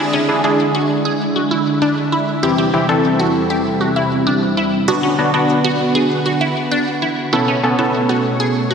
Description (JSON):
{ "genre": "pop", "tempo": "98 BPM", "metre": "4/4", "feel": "straight", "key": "E mixolydian", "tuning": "A4 = 440 Hz", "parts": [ { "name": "funky polysynth comp", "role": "accompaniment", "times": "0.0-8.7 s", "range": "E3 to A4", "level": "-18 LUFS", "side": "equal", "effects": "chorus" }, { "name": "ensemble organ-string", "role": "sustained chords", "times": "0.0-8.7 s", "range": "E2 to C#5", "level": "-18 LUFS", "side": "right 1 dB", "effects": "ensemble chorus" }, { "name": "resonant blip pluck", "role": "arpeggios", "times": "0.0-8.7 s", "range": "C4 to G#4", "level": "-20 LUFS", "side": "right 1 dB", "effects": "phaser, ping-pong delay" } ], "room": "wet lush hall reverb, RT60 2.9 s", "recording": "dreamy mix soaked in reverb", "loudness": "-14 LUFS", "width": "side -6 dB against mid", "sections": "0.0-8.7 A section", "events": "none", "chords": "0.0 E7; 2.4 C/E; 4.9 D6; 7.3 Aadd9" }